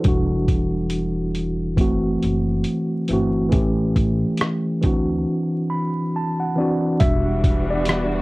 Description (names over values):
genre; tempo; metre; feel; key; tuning
lo-fi hip hop; 69 BPM; 4/4; swing 62% on 16ths; E minor; A4 = 442 Hz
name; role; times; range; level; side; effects
mellow tine electric piano; accompaniment; 0.0-8.2 s; E3 to B5; -21 LUFS; equal; medium stereo tremolo, low-pass filter
dusty soul sampler-style drum kit; drums; 0.0-8.1 s; hi-hat, kick drum, rim click; -20 LUFS; equal; none
upright bass; bass; 0.1-8.2 s; E1 to D2; -25 LUFS; equal; none
warm studio string section; sustained chords; 7.0-8.2 s; E3 to F#4; -26 LUFS; left 1 dB; low-pass filter
room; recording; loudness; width
moderate studio ambience, RT60 0.5 s; worn, warbling old tape, cassette tape, vinyl crackle, warbly pitch drift; -18 LUFS; side -22 dB against mid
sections
0.0-7.0 A section; 7.0-8.2 B section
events
filter sweep on tine electric piano 0.0-7.0; break 5.3-7.0; tine electric piano solo 7.0-8.2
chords
0.1 Em9; 1.8 F#m7b5; 3.5 A7; 4.8 D9; 7.0 Em9